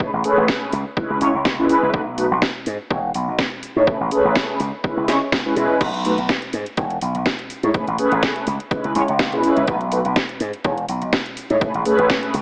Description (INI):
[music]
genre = filtered disco house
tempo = 124 BPM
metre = 4/4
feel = swing 54% on 16ths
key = unclear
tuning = A4 = 441 Hz
[part]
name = mellow synth brass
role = accompaniment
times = 0.0-12.3 s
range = G#3 to C#5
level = -22 LUFS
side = equal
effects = chorus, phaser, sidechain pumping, low-pass filter
[part]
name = slap bass with an envelope filter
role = bass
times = 0.0-12.4 s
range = E1 to C#3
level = -25 LUFS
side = equal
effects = sidechain pumping, low-pass filter
[part]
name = electronic kick drum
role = drums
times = 0.0-12.2 s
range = none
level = -28 LUFS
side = equal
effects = overdrive, studio reverb
[part]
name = house drum kit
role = drums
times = 0.2-12.4 s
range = crash cymbal, hi-hat, snare drum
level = -26 LUFS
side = equal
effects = studio reverb, sidechain pumping on hats, sidechain pumping on cymbals
[sound]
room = moderate plate reverb, RT60 2.0 s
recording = AM radio sound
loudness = -20 LUFS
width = mono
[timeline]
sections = 0.0-12.4 A section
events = none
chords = 0.0 Amaj9; 0.7 C#m7; 1.9 N.C.; 2.9 E5; 3.9 Amaj9; 4.6 C#m7; 5.8 N.C.; 6.8 E5; 7.7 Amaj9; 8.5 C#m7; 9.7 N.C.; 10.6 E5; 11.6 Amaj9